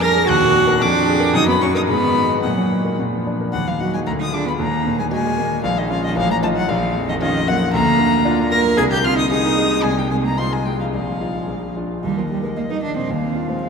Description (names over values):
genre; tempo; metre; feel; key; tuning
quick classical-period movement for piano trio; 113 BPM; 2/4; straight; Eb minor, Eb major from 7.7 s; A4 = 441 Hz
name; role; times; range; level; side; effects
dark violin; melody; 0.0-13.7 s; Eb5 to Bb6; -22 LUFS; left 5 dB; none
warm cello; second line; 0.0-13.7 s; Eb3 to Bb4; -21 LUFS; right 5 dB; none
warm concert grand piano; accompaniment; 0.0-13.7 s; A1 to Bb5; -20 LUFS; left 2 dB; none
room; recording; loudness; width
wet cathedral reverb, RT60 6.5 s; in a vast, echoing space; -16 LUFS; side -5 dB against mid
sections
0.0-3.5 A section; 3.5-12.0 B section; 12.0-13.7 C section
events
none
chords
0.3 Ebm; 0.8 Bb7/F; 1.3 Gb6; 1.9 Abm; 2.4 Ebm/Bb; 3.0 Bb; 3.5 Ebm; 4.1 Ddim7; 4.6 Ebm; 5.6 Bbm; 6.2 F7/A; 6.7 Bbm; 7.7 Bb/D; 8.8 Ab/C; 9.8 Fm7/C; 10.9 Bbsus4; 11.5 Bb; 12.0 Eb; 13.1 Fm7/Eb